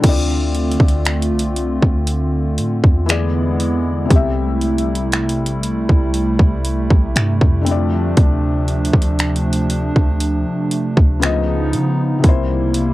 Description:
contemporary R&B; 59 BPM; 4/4; straight; D minor; A4 = 442 Hz
felt-muted upright piano; accompaniment; 0.0-12.9 s; C3 to E5; -24 LUFS; left 6 dB; cassette tape
hollow soft pad; sustained chords; 0.0-12.9 s; C3 to F4; -20 LUFS; right 1 dB; chorus, cassette tape
clean 808-style bass; bass; 0.0-12.9 s; Bb1 to C#3; -20 LUFS; equal
trap drum kit; drums; 0.0-12.9 s; crash cymbal, finger snaps, hi-hat, kick drum; -15 LUFS; equal
light reverb; home recording on cassette; -14 LUFS; side -17 dB against mid
0.0-12.9 A section
0.0 Dm7; 3.1 E7; 4.1 Am7; 7.7 Dm7; 11.2 C#9; 12.2 C7

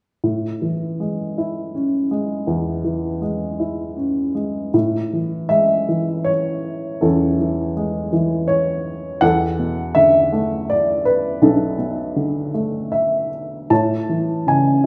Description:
classical, lyrical solo piano; 80 BPM; 3/4; rubato; A major; A4 = 440 Hz
dark upright piano; solo; 0.2-14.9 s; B1 to A5; -20 LUFS; equal
wet recital hall reverb, RT60 1.5 s; recorded in a church or concert hall; -20 LUFS; mono
0.2-4.7 A section; 4.7-14.9 B section
0.2 Amaj7; 9.2 E7sus4; 13.7 Amaj7

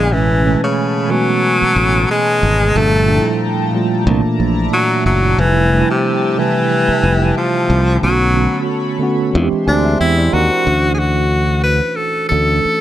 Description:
R&B, neo-soul; 91 BPM; 4/4; swing 56% on 16ths; A4 = 440 Hz
breathy tenor saxophone; melody; 0.0-12.8 s; C3 to B4; -16 LUFS; left 1 dB; tape echo
mellow tine electric piano; accompaniment; 0.0-12.8 s; Bb2 to Bb5; -18 LUFS; right 2 dB; medium stereo tremolo
chorused pulse-width pad; sustained chords; 0.0-10.6 s; F3 to B#5; -25 LUFS; left 1 dB
modern bright fingered electric bass; bass; 0.0-12.7 s; F1 to E2; -16 LUFS; left 1 dB
digital ambience; -12 LUFS; side -12 dB against mid
0.0-10.7 A section; 10.7-12.8 B section
tine electric piano fill 9.7-10.7
0.1 Amaj9; 2.7 Gm9; 4.1 C13 (rootless); 5.4 Fmaj9; 8.0 Bm9; 9.3 E7alt; 10.7 Dmaj7

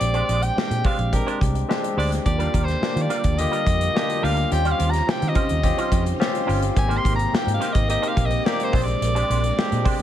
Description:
polished 1980s jazz-funk pop; 107 BPM; 4/4; straight; Eb major; A4 = 439 Hz
breathy soprano saxophone; melody; 0.0-10.0 s; Bb4 to C6; -26 LUFS; equal
barky tine electric piano; accompaniment; 0.0-10.0 s; D3 to G4; -27 LUFS; left 2 dB; overdrive, wide subtle chorus
electric guitar with an envelope filter; riff; 0.0-10.0 s; G3 to C5; -31 LUFS; right 4 dB; ensemble chorus
vintage muted fingered electric bass; bass; 0.0-10.0 s; G1 to Eb3; -23 LUFS; equal
modern studio drum kit; drums; 0.0-10.0 s; hi-hat, kick drum, snare drum; -24 LUFS; equal; gated reverb
string machine, violins; sustained chords; 2.3-10.0 s; C3 to C5; -33 LUFS; equal
light reverb; -19 LUFS; side -11 dB against mid
0.0-10.0 A section
soprano saxophone solo 0.0-10.0
0.0 Bb13; 2.3 Ebmaj9; 4.5 Eb13; 6.8 Abmaj9; 8.7 Bb13

